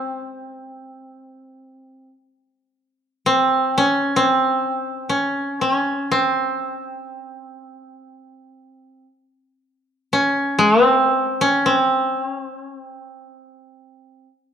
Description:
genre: japanese traditional, Japanese chamber music.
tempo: free time.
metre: none.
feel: none.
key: unclear.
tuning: A4 = 441 Hz.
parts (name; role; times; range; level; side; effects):
koto; solo; 0.0-14.3 s; C4 to Db4; -17 LUFS; equal; none.
room: moderate recital hall reverb, RT60 1.3 s.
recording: dark, warm production.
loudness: -16 LUFS.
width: side -8 dB against mid.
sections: 0.0-14.5 A section.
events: none.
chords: none.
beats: free time.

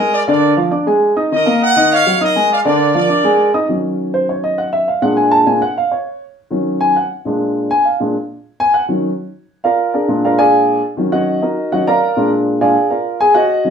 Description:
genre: latin.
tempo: 202 BPM.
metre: 4/4.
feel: straight.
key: Eb minor.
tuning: A4 = 441 Hz.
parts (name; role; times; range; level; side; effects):
bright trumpet section; melody; 0.0-3.5 s; Bb4 to Gb5; -15 LUFS; right 2 dB; plate reverb.
dark upright piano; accompaniment; 0.0-13.7 s; Bb2 to Eb6; -13 LUFS; equal; none.
room: wet small room reverb, RT60 0.6 s.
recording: heard from further back in the room.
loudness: -12 LUFS.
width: side -7 dB against mid.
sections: 0.0-3.7 A section; 3.7-13.7 B section.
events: upright piano solo 3.7-13.7.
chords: 0.1 Bb7; 1.3 Ebm7; 2.5 Bb7; 3.7 Ebm7; 4.9 Bb7; 6.1 Ebm7; 7.3 Bb7; 8.4 Ebm7; 9.6 Bb7; 10.8 Ebm7; 12.0 Bb7; 13.2 Ebm7.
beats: | 0.12 0.42 0.71 1.01 | 1.31 1.61 1.91 2.20 | 2.50 2.80 3.10 3.39 | 3.69 3.99 4.29 4.58 | 4.88 5.18 5.48 5.77 | 6.07 6.37 6.67 6.96 | 7.26 7.56 7.86 8.15 | 8.45 8.75 9.04 9.34 | 9.64 9.94 10.23 10.53 | 10.83 11.12 11.42 11.72 | 12.02 12.31 12.61 12.91 | 13.20 13.50.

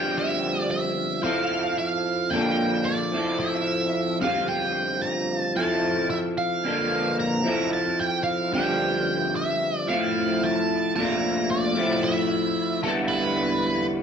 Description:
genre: rock.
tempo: 111 BPM.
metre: 4/4.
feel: straight.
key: unclear.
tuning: A4 = 440 Hz.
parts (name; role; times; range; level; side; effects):
octave-fuzz lead guitar; melody; 0.0-13.9 s; A4 to Bb5; -27 LUFS; right 2 dB; wah, distortion.
electric guitar through a small old amp; riff; 0.0-14.0 s; G2 to A4; -24 LUFS; equal; rotary speaker.
room: moderate large studio reverb, RT60 0.9 s.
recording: band playing live in one room.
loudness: -22 LUFS.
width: side -7 dB against mid.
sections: 0.0-14.0 A section.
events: none.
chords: 0.0 G7sus4; 1.2 Fmaj7; 2.3 Bbmaj7; 3.1 Fmaj7; 4.2 G7sus4; 5.6 Fmaj7; 6.6 Bbmaj7; 7.5 Fmaj7; 8.5 G7sus4; 9.9 Fmaj7; 11.0 Bbmaj7; 11.8 Fmaj7; 12.8 G6.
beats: 0.16 0.70 | 1.24 1.78 2.32 2.86 | 3.40 3.94 4.48 5.02 | 5.56 6.10 6.64 7.18 | 7.72 8.26 8.80 9.34 | 9.88 10.41 10.95 11.49 | 12.03 12.56 13.10 13.64.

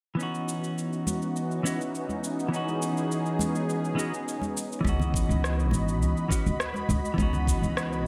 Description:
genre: sunset chillout.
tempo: 103 BPM.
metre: 4/4.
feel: straight.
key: C# minor.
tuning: A4 = 441 Hz.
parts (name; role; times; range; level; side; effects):
clean electric guitar; accompaniment; 0.1-8.1 s; E3 to F#4; -32 LUFS; equal; low-pass filter, analog delay.
lush unison pad; sustained chords; 0.2-8.1 s; E3 to B5; -35 LUFS; equal; chorus.
electronic cabasa and rim click; drums; 0.2-8.0 s; none; -38 LUFS; equal; none.
congas; percussion; 1.1-7.4 s; none; -38 LUFS; equal; tape echo.
upright bass; bass; 4.8-8.1 s; G#1 to C#2; -30 LUFS; equal; none.
electronic kick drum; drums; 4.8-7.6 s; none; -30 LUFS; equal; none.
room: moderate echo chamber reverb, RT60 2.2 s.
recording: echo-heavy mix.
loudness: -28 LUFS.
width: mono.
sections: 0.2-4.9 A section; 4.9-8.1 B section.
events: none.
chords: 0.2 C#m11.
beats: | 0.19 0.77 1.36 1.94 | 2.52 3.10 3.69 4.27 | 4.85 5.43 6.02 6.60 | 7.18 7.76.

